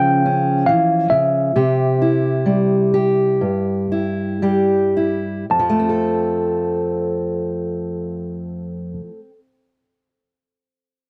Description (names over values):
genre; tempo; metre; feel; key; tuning
acoustic folk duo or small band; 53-72 BPM; 4/4; straight; F major; A4 = 440 Hz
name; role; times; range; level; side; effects
mellow tine electric piano; melody; 0.0-8.9 s; E5 to A5; -22 LUFS; equal; none
fingerpicked steel-string acoustic guitar; accompaniment; 0.0-9.4 s; F2 to A4; -20 LUFS; equal; none
room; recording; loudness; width
light reverb; dry, close 1970s-style studio recording; -18 LUFS; mono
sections
0.0-5.5 A section; 5.5-10.0 B section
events
slowing down 0.0-5.5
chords
0.0 Db; 1.6 C; 5.5 F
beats
0.69 | 1.56 2.46 3.42 4.42 | 5.51 6.63 7.75 8.88